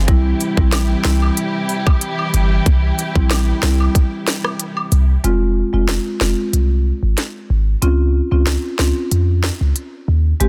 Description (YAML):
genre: dancehall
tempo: 93 BPM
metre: 4/4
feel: straight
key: F minor from 5.2 s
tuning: A4 = 440 Hz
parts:
  - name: warm studio string section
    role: sustained chords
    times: 0.0-5.2 s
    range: C3 to G4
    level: -27 LUFS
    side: equal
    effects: sidechain pumping
  - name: warm 808-style bass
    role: bass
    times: 0.0-10.5 s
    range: F1 to F2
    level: -18 LUFS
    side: equal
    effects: none
  - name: marimba with medium mallets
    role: accompaniment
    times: 0.1-10.5 s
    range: G3 to G4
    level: -25 LUFS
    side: equal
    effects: none
  - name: island pop drum kit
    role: drums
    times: 0.1-10.5 s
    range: hi-hat, kick drum, rim click, snare drum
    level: -21 LUFS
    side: equal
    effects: none
  - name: cabasa and woodblock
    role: percussion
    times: 0.4-5.1 s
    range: none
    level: -31 LUFS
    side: equal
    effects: none
room: small room ambience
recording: dense, heavily limited modern master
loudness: -17 LUFS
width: mono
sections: 0.0-5.2 A section; 5.2-10.5 B section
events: kick muted 5.2-10.5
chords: 0.1 C; 5.2 Fm; 7.8 Dbmaj7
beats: | 0.08 0.73 1.37 2.02 | 2.66 3.31 3.95 4.60 | 5.24 5.89 6.53 7.18 | 7.82 8.47 9.11 9.76 | 10.40